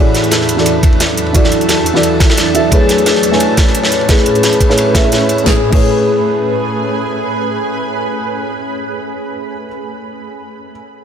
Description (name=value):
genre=liquid drum and bass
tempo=175 BPM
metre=4/4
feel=swing 54% on 16ths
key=A major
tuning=A4 = 440 Hz
part: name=felt-muted upright piano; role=accompaniment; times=0.0-10.7 s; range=E3 to G#5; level=-16 LUFS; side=right 2 dB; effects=low-pass filter, tape echo
part: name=shimmering ambient pad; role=sustained chords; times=0.0-9.0 s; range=E2 to B4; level=-18 LUFS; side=right 1 dB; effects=chorus, built-in reverb, sidechain pumping
part: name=concert harp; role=arpeggios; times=0.0-8.0 s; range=F#4 to D5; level=-18 LUFS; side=left 6 dB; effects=low-pass filter, ping-pong delay
part: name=pop drum kit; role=drums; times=0.1-5.8 s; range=crash cymbal, hi-hat, snare drum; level=-20 LUFS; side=right 1 dB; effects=small room ambience
part: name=crunchy breakbeat drum kit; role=drums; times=0.2-5.4 s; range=ride cymbal, snare drum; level=-18 LUFS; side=equal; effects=high-pass filter on cymbals, small room ambience, high-pass filter on snare, high-pass filter on room
part: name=electronic kick drum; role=drums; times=0.8-5.8 s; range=none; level=-12 LUFS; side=equal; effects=small room ambience
room=light reverb, small room ambience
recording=none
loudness=-10 LUFS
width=side -8 dB against mid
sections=0.0-5.5 A section; 5.5-8.2 B section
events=filter sweep on harp 0.0-5.5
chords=0.0 E9sus4; 2.7 Amaj9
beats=0.32 0.66 1.00 | 1.35 1.69 2.03 2.37 | 2.72 3.06 3.40 3.75 | 4.09 4.43 4.77 5.12 | 5.46 5.80 6.15 6.49 | 6.83 7.17 7.52 7.86